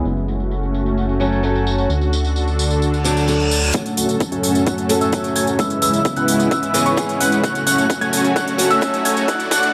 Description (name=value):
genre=EDM, festival progressive house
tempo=130 BPM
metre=4/4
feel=straight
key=F# minor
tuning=A4 = 440 Hz
part: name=picked old ladder-braced acoustic guitar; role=accompaniment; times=0.0-9.3 s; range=E3 to A4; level=-25 LUFS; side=equal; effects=sidechain pumping, digital delay
part: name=supersaw pad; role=sustained chords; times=0.0-9.7 s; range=C#2 to A4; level=-25 LUFS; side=equal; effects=sidechain pumping
part: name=fat analog bass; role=bass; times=0.0-3.7 s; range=F#1 to D2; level=-22 LUFS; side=equal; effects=sidechain pumping
part: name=downlifter, reverse cymbal and riser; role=sound effects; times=3.0-9.7 s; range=none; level=-31 LUFS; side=equal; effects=none
part: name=electronic tambourine and hi-hat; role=drums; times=0.1-9.7 s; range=none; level=-27 LUFS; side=equal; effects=overdrive, high-pass filter on hats, high-pass filter on perc
part: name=bright grand piano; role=arpeggios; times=3.7-9.7 s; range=C#6 to G#6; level=-23 LUFS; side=equal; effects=sidechain pumping, low-pass filter, digital delay
part: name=dense compressed supersaw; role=riff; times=3.7-9.7 s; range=G#3 to G#5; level=-22 LUFS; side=equal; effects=sidechain pumping, low-pass filter, digital delay
part: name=electronic kick drum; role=drums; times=3.7-9.6 s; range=none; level=-25 LUFS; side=equal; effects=overdrive, high-pass filter on kick
room=moderate digital room reverb, RT60 1.2 s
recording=high-pass filter, low-pass filter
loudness=-18 LUFS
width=mono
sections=0.0-3.7 A section; 3.7-9.7 B section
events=filter sweep on supersaw synth 0.0-3.7, 3.7-9.7; filter sweep 0.0-3.7; reverse cymbal 3.0-3.7; build-up 3.7-9.7; filter sweep on grand piano 3.7-9.7; drum fill 7.4-9.7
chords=0.1 F#m; 1.9 D; 3.7 F#m; 5.6 C#m7; 7.4 F#m